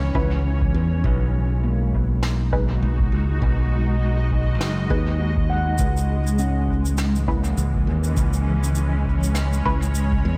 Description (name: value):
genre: ambient dub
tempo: 101 BPM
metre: 4/4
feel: swing 58% on 16ths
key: C# dorian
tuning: A4 = 440 Hz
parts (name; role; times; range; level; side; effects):
- granular cloud pad; sustained chords; 0.0-10.4 s; E3 to B5; -30 LUFS; equal; built-in reverb
- handpan; arpeggios; 0.0-9.2 s; A#3 to F#5; -35 LUFS; equal; low-pass filter, dub echo
- modern bright fingered electric bass; bass; 0.0-10.4 s; F#1 to E2; -23 LUFS; equal; none
- filtered dub chord stab; stabs; 0.1-9.9 s; C#4 to B4; -33 LUFS; equal; phaser, dub echo
- electronic kick drum; drums; 0.1-10.2 s; none; -28 LUFS; equal; none
- snare drum and cabasa; drums; 2.2-10.1 s; none; -36 LUFS; equal; dub echo
room: light reverb, small room ambience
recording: none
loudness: -21 LUFS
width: mono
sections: 0.0-10.4 A section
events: none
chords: 0.0 C#m7; 1.0 B6; 5.8 C#m7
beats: 0.45 | 1.04 1.64 2.23 2.82 | 3.42 4.01 4.61 5.20 | 5.79 6.39 6.98 7.58 | 8.17 8.77 9.36 9.95